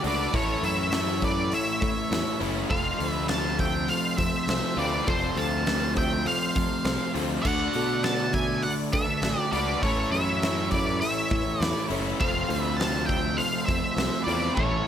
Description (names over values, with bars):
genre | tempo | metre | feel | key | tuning
classic rock | 101 BPM | 4/4 | straight | unclear | A4 = 438 Hz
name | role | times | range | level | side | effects
reed electric piano | accompaniment | 0.0-14.8 s | E4 to E5 | -37 LUFS | left 3 dB | overdrive, fast tremolo
bright tonewheel organ | sustained chords | 0.0-14.9 s | A3 to D5 | -40 LUFS | equal | none
overdriven semi-hollow guitar | riff | 0.0-14.9 s | F2 to F#4 | -31 LUFS | left 10 dB | none
raw garage guitar | riff | 0.0-14.9 s | A2 to F#4 | -33 LUFS | right 11 dB | overdrive
modern bright picked electric bass | bass | 0.0-14.8 s | F1 to D3 | -31 LUFS | equal | none
huge arena drum kit | drums | 0.0-14.7 s | crash cymbal, hi-hat, kick drum, snare drum, toms | -30 LUFS | equal | none
octave-fuzz lead guitar | melody | 0.1-14.9 s | C5 to A5 | -29 LUFS | right 1 dB | distortion
octave-fuzz lead guitar | second line | 0.1-14.9 s | A4 to F#5 | -37 LUFS | right 4 dB | distortion
room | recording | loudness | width
light reverb, studio ambience | none | -23 LUFS | side -9 dB against mid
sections
0.0-14.9 A section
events
drum fill 14.6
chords
0.3 A; 2.7 F; 7.5 D; 9.8 A; 12.2 F